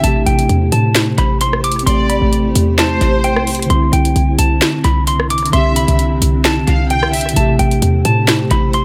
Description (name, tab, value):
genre	hip hop, trap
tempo	131 BPM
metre	4/4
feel	half-time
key	unclear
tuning	A4 = 440 Hz
part	mellow electric guitar	melody	0.0-8.8 s	G5 to D6	-22 LUFS	equal	warbly pitch drift, low-pass filter, tape echo
part	dark studio violin section	second line	0.0-7.4 s	C5 to G5	-24 LUFS	equal	tape echo
part	mellow tine electric piano	accompaniment	0.0-8.8 s	C3 to G4	-21 LUFS	equal	low-pass filter, tape echo
part	granular cloud pad	sustained chords	0.0-8.8 s	C3 to C5	-26 LUFS	equal	built-in reverb
part	short 808-style bass	bass	0.0-8.8 s	A1 to A2	-18 LUFS	equal	none
part	trap drum kit	drums	0.0-8.8 s	finger snaps, hi-hat, rim click, snare drum	-20 LUFS	equal	tape echo
room	little or no reverb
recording	echo-heavy mix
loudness	-14 LUFS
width	mono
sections	0.0-8.8 A section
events	none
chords	0.0 Am7; 3.7 Cadd9; 7.4 Am7